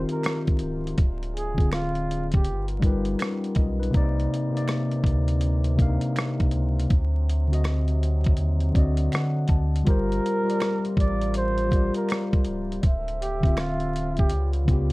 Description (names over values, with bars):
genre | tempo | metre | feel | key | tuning
lo-fi hip hop | 81 BPM | 4/4 | swing 63% on 16ths | G minor | A4 = 441 Hz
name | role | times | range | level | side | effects
mellow flugelhorn | melody | 0.0-2.7, 9.9-14.5 s | F4 to D5 | -30 LUFS | right 2 dB | low-pass filter, tape echo, plate reverb
mellow tine electric piano | accompaniment | 0.0-14.9 s | C3 to A5 | -26 LUFS | left 1 dB | cassette tape, low-pass filter
mellow French horn section | sustained chords | 0.0-14.9 s | C3 to E5 | -37 LUFS | equal | low-pass filter
saturated sub bass | bass | 0.0-14.9 s | C#1 to D3 | -26 LUFS | equal | none
boom bap sampler-style drum kit | drums | 0.1-14.9 s | hi-hat, kick drum, rim click | -23 LUFS | equal | vintage 12-bit sampler grit
finger snaps | percussion | 0.2-13.8 s | none | -42 LUFS | right 5 dB | none
room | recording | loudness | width
light reverb | dark, warm production, vinyl crackle | -22 LUFS | side -21 dB against mid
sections
0.0-9.9 A section; 9.9-14.9 A section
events
tine electric piano fill 8.4-9.9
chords
0.0 Eb69; 1.0 Dm7b5; 2.5 G7alt; 3.9 Cm9; 6.9 D7b9; 9.9 Gm11; 12.8 Dm9; 14.3 C#7#11